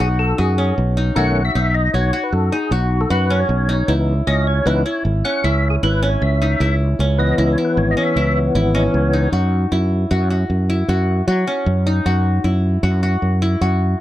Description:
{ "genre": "progressive instrumental, progressive", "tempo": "154 BPM", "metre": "7/4", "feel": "straight", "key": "unclear", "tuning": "A4 = 441 Hz", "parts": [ { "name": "percussive tonewheel organ", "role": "accompaniment", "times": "0.0-9.3 s", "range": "D#3 to F#5", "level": "-20 LUFS", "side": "left 2 dB", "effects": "chorus vibrato, slow rotary speaker" }, { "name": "qanun", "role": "arpeggios", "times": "0.0-14.0 s", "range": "C#4 to F#4", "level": "-22 LUFS", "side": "equal", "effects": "none" }, { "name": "fretless electric bass", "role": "bass", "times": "0.0-13.9 s", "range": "G#1 to F#3", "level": "-17 LUFS", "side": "equal", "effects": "none" } ], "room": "little or no reverb", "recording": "dry, close 1970s-style studio recording", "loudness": "-15 LUFS", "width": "side -14 dB against mid", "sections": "0.0-9.3 A section; 9.3-14.0 B section", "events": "tonewheel organ solo 0.0-9.3", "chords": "0.0 B7; 3.9 C#m7; 9.3 F#5" }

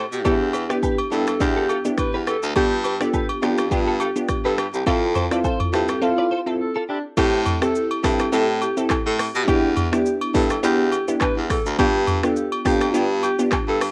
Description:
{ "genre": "afrobeats", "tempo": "104 BPM", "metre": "4/4", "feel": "swing 55% on 16ths", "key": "A minor", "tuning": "A4 = 439 Hz", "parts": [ { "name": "direct-recorded clean electric guitar", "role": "riff", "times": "0.0-7.0 s", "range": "E4 to D5", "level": "-30 LUFS", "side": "equal", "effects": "ensemble chorus" }, { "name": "bright baritone saxophone", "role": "bass", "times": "0.0-13.9 s", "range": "C2 to B2", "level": "-26 LUFS", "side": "equal", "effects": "none" }, { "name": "breathy alto saxophone", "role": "melody", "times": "0.1-13.8 s", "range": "D4 to B4", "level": "-28 LUFS", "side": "equal", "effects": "cassette tape, tape echo" }, { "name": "afro-pop drum kit", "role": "drums", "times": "0.1-13.9 s", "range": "crash cymbal, finger snaps, handclaps, hi-hat, kick drum, rim click, shaker, toms", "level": "-28 LUFS", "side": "equal", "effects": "cassette tape" }, { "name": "glassy wavetable pluck", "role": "accompaniment", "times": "0.2-13.6 s", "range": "B3 to A4", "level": "-25 LUFS", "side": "equal", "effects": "chorus" }, { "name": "agogo bells and woodblock", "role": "percussion", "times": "0.2-13.9 s", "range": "none", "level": "-32 LUFS", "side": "equal", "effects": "none" } ], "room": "light reverb", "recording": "home recording on cassette", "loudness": "-21 LUFS", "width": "mono", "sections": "0.0-7.2 A section; 7.2-13.9 B section", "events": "none", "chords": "0.3 Em7; 2.6 G7; 4.9 Fmaj7; 7.2 Am7; 9.5 Em7; 11.8 G7" }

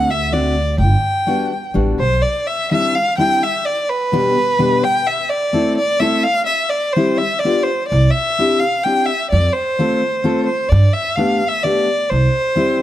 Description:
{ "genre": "musette waltz", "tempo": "127 BPM", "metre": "3/4", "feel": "straight", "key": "C major", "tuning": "A4 = 440 Hz", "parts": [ { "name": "warm violin", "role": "melody", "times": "0.0-12.8 s", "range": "B4 to G5", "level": "-17 LUFS", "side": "equal", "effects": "none" }, { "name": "fingerpicked steel-string acoustic guitar", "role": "accompaniment", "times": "0.0-12.8 s", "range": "B2 to A4", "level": "-18 LUFS", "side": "left 2 dB", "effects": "none" }, { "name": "upright bass", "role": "bass", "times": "0.0-2.2, 7.9-12.3 s", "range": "G1 to G2", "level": "-15 LUFS", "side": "right 1 dB", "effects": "none" } ], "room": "light reverb", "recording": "close, detailed microphones", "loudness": "-14 LUFS", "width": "side -13 dB against mid", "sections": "0.0-2.2 A section; 2.2-12.8 B section", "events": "none", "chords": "0.0 D7; 0.8 Gmaj7; 2.2 Cadd9; 3.7 G/B; 5.1 Am; 6.5 C; 7.4 G7; 7.9 Cadd9; 9.3 F; 10.7 Gadd9; 12.1 C" }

